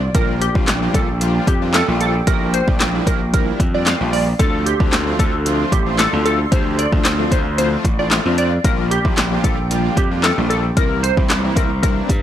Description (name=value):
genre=dance-pop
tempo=113 BPM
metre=4/4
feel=straight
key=unclear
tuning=A4 = 440 Hz
part: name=big bright polysynth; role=accompaniment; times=0.0-12.1 s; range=E3 to G4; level=-24 LUFS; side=left 1 dB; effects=chorus
part: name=breathy small flute group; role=sustained chords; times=0.0-12.2 s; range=F4 to C6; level=-28 LUFS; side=right 2 dB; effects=sidechain pumping
part: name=gritty slap bass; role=bass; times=0.0-12.2 s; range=A1 to G2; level=-20 LUFS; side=equal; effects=overdrive, sidechain pumping
part: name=glassy wavetable pluck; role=melody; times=0.1-11.9 s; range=G4 to F5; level=-22 LUFS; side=right 1 dB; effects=chorus, sidechain pumping, analog delay
part: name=deep house drum kit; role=drums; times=0.1-12.2 s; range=handclaps, hi-hat, kick drum, snare drum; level=-18 LUFS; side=equal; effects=overdrive
room=little or no reverb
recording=dry, gritty hardware recording, transformer saturation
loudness=-14 LUFS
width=side -11 dB against mid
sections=0.0-12.2 A section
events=none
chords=0.1 Bb6; 4.4 Dm7; 8.6 Bb6; 10.8 C7